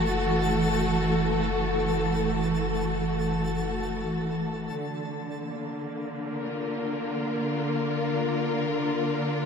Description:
ambient; free time; A4 = 440 Hz
dark symphonic string section; sustained chords; 0.0-9.5 s; D3 to Bb4; -26 LUFS; equal; low-pass filter
warm sub bass; bass; 0.0-4.7 s; F#1; -33 LUFS; equal
twinkling granular texture; texture; 0.0-4.8 s; A4 to A5; -36 LUFS; equal; built-in reverb
bowed-like drone; drone; 5.7-9.5 s; D3 to D4; -33 LUFS; left 3 dB; built-in reverb
wet huge ambient reverb, RT60 8.0 s; -25 LUFS; side -6 dB against mid
0.0-4.8 A section; 4.8-9.5 B section
filter sweep on string section 4.8-9.5
0.0 F#m7; 4.8 Bb

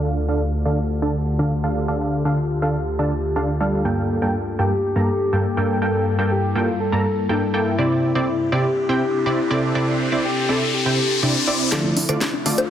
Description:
progressive house; 122 BPM; 4/4; straight; D minor; A4 = 442 Hz
evolving wavetable pad; sustained chords; 0.0-12.7 s; D2 to A4; -24 LUFS; left 2 dB; phaser, built-in reverb
supersaw stab; stabs; 0.0-12.6 s; G2 to Bb5; -21 LUFS; right 1 dB; cassette tape, low-pass filter, dub echo
warm velvety synth lead; melody; 4.6-12.7 s; D4 to A4; -24 LUFS; left 1 dB; chorus, dub echo
riser; sound effects; 8.8-12.7 s; -25 LUFS; left 4 dB
tight sequenced synth; arpeggios; 11.7-12.6 s; D4 to C5; -25 LUFS; left 3 dB; chorus
house drum kit; drums; 11.7-12.7 s; hi-hat, snare drum; -24 LUFS; equal; low-pass filter on snare, low-pass filter on hats
fat analog bass; bass; 12.0-12.7 s; D2; -29 LUFS; left 1 dB; high-pass filter
light reverb, digital ambience; dense, heavily limited modern master, low-pass filter; -18 LUFS; side -10 dB against mid
0.0-11.7 A section
filter sweep on ambient pad 0.0-11.7; filter sweep 0.0-11.7; riser 8.8-11.7, 11.7-12.7; drum fill 11.7-12.7
0.0 Dm; 3.9 Gmadd9; 7.8 Cadd9; 11.7 Dm

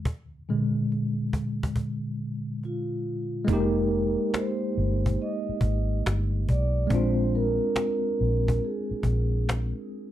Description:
lo-fi hip hop; 70 BPM; 4/4; swing 66% on 16ths; F dorian; A4 = 440 Hz
tine electric piano; accompaniment; 0.0-10.1 s; Bb2 to G4; -28 LUFS; left 1 dB; overdrive, medium stereo tremolo, low-pass filter
cajon; drums; 0.1-9.7 s; -28 LUFS; equal
vibraphone with soft mallets; melody; 2.6-9.4 s; F4 to Eb5; -30 LUFS; right 3 dB; low-pass filter, tape echo
vintage muted fingered electric bass; bass; 3.5-9.7 s; F1 to B1; -26 LUFS; equal
moderate studio reverb, RT60 0.6 s; dark, warm production; -24 LUFS; side -12 dB against mid
0.0-3.5 A section; 3.5-10.1 B section
tine electric piano solo 0.0-3.5; hi-hats muted 3.5-10.1
0.0 Bb7; 3.5 Fm11; 6.9 Bb7

